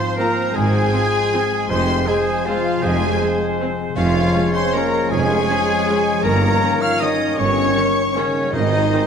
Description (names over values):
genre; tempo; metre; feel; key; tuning
classical, orchestral ballroom waltz; 158 BPM; 3/4; uneven beats, rubato; F minor; A4 = 438 Hz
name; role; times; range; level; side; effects
rich symphonic violin section; melody; 0.0-9.1 s; Db5 to F6; -25 LUFS; left 3 dB; none
bright clarinet; second line; 0.0-9.1 s; Db4 to F5; -27 LUFS; equal; none
clear oboe; second line; 0.0-9.1 s; C5 to Db5; -29 LUFS; right 2 dB; none
warm studio violin section; second line; 0.0-9.1 s; Db4 to F5; -29 LUFS; equal; none
mellow bassoon; accompaniment; 0.0-9.1 s; Eb3 to Ab3; -28 LUFS; right 1 dB; none
mellow French horn section; sustained chords; 0.0-9.1 s; Db3 to F4; -24 LUFS; left 4 dB; none
warm trombone section; sustained chords; 0.0-9.1 s; Eb3 to Db4; -29 LUFS; right 5 dB; none
concert harp; arpeggios; 0.0-9.1 s; F2 to Db6; -27 LUFS; left 8 dB; none
mellow trumpet; stabs; 0.0-9.1 s; Db4 to F5; -25 LUFS; right 1 dB; none
mellow silver concert flute; second line; 0.2-9.1 s; Db5 to F6; -28 LUFS; left 1 dB; none
rich symphonic viola section; accompaniment; 0.2-9.0 s; Eb3 to Db4; -30 LUFS; right 1 dB; none
bright chamber cello section; bass; 0.5-8.8 s; F2 to Ab2; -26 LUFS; right 3 dB; none
warm symphonic double bass section; bass; 0.6-8.8 s; F1 to Ab1; -26 LUFS; right 3 dB; none
warm tuba; bass; 0.6-8.8 s; F1 to Ab1; -28 LUFS; right 4 dB; none
timpani; percussion; 8.5-9.1 s; Ab2; -27 LUFS; right 2 dB; none
room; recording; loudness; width
wet scoring stage reverb, RT60 1.9 s; none; -16 LUFS; side -7 dB against mid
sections
0.0-9.1 A section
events
none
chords
0.0 Fm/Ab; 1.7 Fm; 4.0 Db/F; 6.2 Eb7/G; 8.5 Ab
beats
0.18 | 0.55 0.93 1.33 | 1.70 2.08 2.46 | 2.83 3.21 3.60 | 3.96 4.34 4.74 | 5.11 5.48 5.87 | 6.24 6.62 7.01 | 7.39 7.76 8.16 | 8.53 8.91